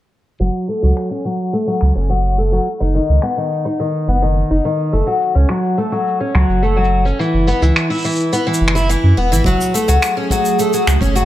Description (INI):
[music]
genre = folktronica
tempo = 106 BPM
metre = 4/4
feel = straight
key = F# dorian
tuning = A4 = 439 Hz
[part]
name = picked twelve-string acoustic guitar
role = arpeggios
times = 0.4-11.2 s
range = D#3 to E4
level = -16 LUFS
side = left 1 dB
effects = low-pass filter, ping-pong delay
[part]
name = warm sub bass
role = bass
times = 0.4-11.2 s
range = E1 to F#2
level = -14 LUFS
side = equal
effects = none
[part]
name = shaker and finger snaps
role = drums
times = 0.4-11.2 s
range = none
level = -23 LUFS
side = equal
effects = low-pass filter on perc, low-pass filter on snare, low-pass filter on room
[part]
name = warbly tape-like pad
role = sustained chords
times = 10.0-11.2 s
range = F#3 to G#4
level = -20 LUFS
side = right 3 dB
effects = chorus, built-in reverb
[part]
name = kick drum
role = drums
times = 9.4-11.1 s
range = none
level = -22 LUFS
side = equal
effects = none
[sound]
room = light reverb, small room reverb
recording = low-pass filter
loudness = -14 LUFS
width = side -13 dB against mid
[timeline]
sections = 0.4-9.5 A section; 9.5-11.2 B section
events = filter sweep on drum 0.4-9.5; filter sweep on sub bass 0.4-9.5; filter sweep on twelve-string acoustic guitar 0.4-9.5; filter sweep 0.4-9.5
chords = 0.4 F#m; 2.7 B/F# (rootless); 4.9 F#m; 7.2 Bsus4/F#; 9.5 F#madd9